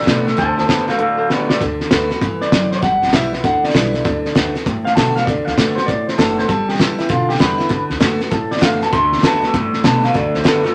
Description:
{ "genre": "rockabilly", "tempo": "197 BPM", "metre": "4/4", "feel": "swing 64% on 8ths", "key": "D major", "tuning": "A4 = 444 Hz", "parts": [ { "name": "electric guitar through a small old amp", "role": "melody", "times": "0.0-10.7 s", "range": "F4 to C6", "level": "-21 LUFS", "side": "equal", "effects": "none" }, { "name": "picked steel-string acoustic guitar", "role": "accompaniment", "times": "0.0-10.7 s", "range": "A2 to F#4", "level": "-23 LUFS", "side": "equal", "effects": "none" }, { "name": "electric guitar through a small old amp", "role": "riff", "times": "0.0-1.6, 8.9-10.7 s", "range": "D3 to B3", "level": "-23 LUFS", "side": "equal", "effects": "none" }, { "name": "cloth-damped thuddy drum kit", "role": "drums", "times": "0.0-10.7 s", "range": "hi-hat, kick drum, snare drum", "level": "-20 LUFS", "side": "equal", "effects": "none" }, { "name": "upright bass", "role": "bass", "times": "0.1-10.7 s", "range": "F#1 to B2", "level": "-29 LUFS", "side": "equal", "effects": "none" } ], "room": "moderate studio reverb, RT60 0.7 s", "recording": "none", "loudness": "-16 LUFS", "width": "mono", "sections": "0.0-1.6 A section; 1.6-10.7 B section", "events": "drum fill 1.3-1.6; clean electric guitar solo 1.6-10.7", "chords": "0.0 D6; 2.8 G6; 4.1 D6; 6.5 G6; 7.7 D6" }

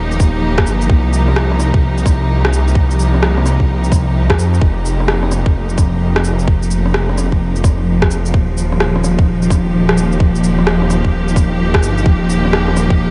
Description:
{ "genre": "future garage", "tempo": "129 BPM", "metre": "4/4", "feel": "swing 63% on 16ths", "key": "unclear", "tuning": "A4 = 440 Hz", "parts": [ { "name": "rich studio string section", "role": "sustained chords", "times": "0.0-13.1 s", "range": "F3 to G4", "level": "-20 LUFS", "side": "equal", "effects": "sidechain pumping" }, { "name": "swelling detuned saw bass", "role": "bass", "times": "0.0-13.1 s", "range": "Eb1 to F2", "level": "-18 LUFS", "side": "equal", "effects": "sidechain pumping" }, { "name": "electronic shaker and rim click", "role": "drums", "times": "0.1-12.9 s", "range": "none", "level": "-24 LUFS", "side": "equal", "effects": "overdrive" }, { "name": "electronic kick drum", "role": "drums", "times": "0.2-13.0 s", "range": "none", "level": "-15 LUFS", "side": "equal", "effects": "overdrive" } ], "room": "light reverb", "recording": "vinyl crackle, nothing above 10.9 kHz", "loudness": "-14 LUFS", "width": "mono", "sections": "0.0-13.1 A section", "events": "none", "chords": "0.0 Eb; 0.9 Cm7; 4.6 F9sus4; 8.3 Eb" }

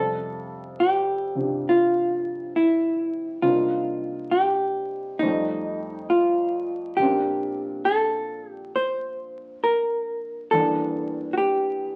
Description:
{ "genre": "jazz ballad", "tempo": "68 BPM", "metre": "4/4", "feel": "swing 66% on 8ths", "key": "F major", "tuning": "A4 = 440 Hz", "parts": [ { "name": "hollow-body jazz guitar", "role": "melody", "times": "0.0-12.0 s", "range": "Eb4 to C5", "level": "-25 LUFS", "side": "equal", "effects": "none" }, { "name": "warm baby grand piano", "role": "accompaniment", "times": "0.0-12.0 s", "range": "E2 to E5", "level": "-32 LUFS", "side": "equal", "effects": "none" } ], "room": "wet studio reverb, RT60 0.7 s", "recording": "very old 78 rpm record, vinyl crackle", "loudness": "-24 LUFS", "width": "mono", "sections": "0.0-12.0 A section", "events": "none", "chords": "0.0 Fmaj9; 3.4 Cm11; 5.2 F9; 7.0 Bbmaj9; 10.5 Em7b5" }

